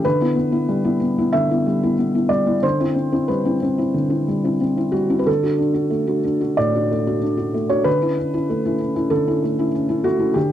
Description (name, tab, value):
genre	neoclassical minimalist piano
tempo	93 BPM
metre	4/4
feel	uneven beats, rubato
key	unclear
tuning	A4 = 444 Hz
part	felt-muted upright piano	solo	0.0-10.5 s	A2 to E5	-17 LUFS	equal	none
room	light reverb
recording	dry, close 1970s-style studio recording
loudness	-17 LUFS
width	side -11 dB against mid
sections	0.0-10.5 A section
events	none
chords	0.0 Em7/D; 2.6 Cmaj7/D; 5.3 D; 7.9 A/D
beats	| 0.04 0.67 1.33 1.97 | 2.63 3.30 3.96 4.62 | 5.28 5.92 6.59 7.23 | 7.86 8.48 9.11 9.73 | 10.36